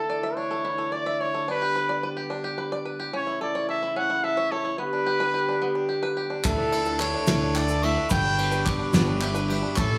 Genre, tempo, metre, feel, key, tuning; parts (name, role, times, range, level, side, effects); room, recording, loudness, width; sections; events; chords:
indie folk with a building arrangement; 72 BPM (dotted quarters); 6/8; straight; A4 = 440 Hz
mellow trumpet; melody; 0.0-10.0 s; A4 to G5; -29 LUFS; equal; slapback echo
mellow brass ensemble; sustained chords; 0.0-10.0 s; C#3 to G4; -34 LUFS; equal
bluegrass banjo; arpeggios; 0.0-10.0 s; A3 to E5; -35 LUFS; equal
clear upright piano; accompaniment; 6.4-10.0 s; G1 to G5; -37 LUFS; equal
picked steel-string acoustic guitar; accompaniment; 6.4-10.0 s; G2 to A4; -34 LUFS; equal
upright bass; bass; 6.4-10.0 s; G1 to D2; -30 LUFS; equal
soft brush drum kit; drums; 6.4-9.9 s; kick drum, ride cymbal, snare drum; -30 LUFS; equal
egg shaker; percussion; 6.4-9.9 s; -43 LUFS; equal
group handclap; percussion; 6.4-9.9 s; -36 LUFS; equal
glockenspiel with soft plastic mallets; second line; 6.5-10.0 s; A5 to D6; -35 LUFS; equal
light reverb; small room ambience; -25 LUFS; mono
0.0-10.0 A section
0.0 Dsus2; 1.5 G; 3.1 A; 4.8 G; 6.4 Dsus2; 8.1 G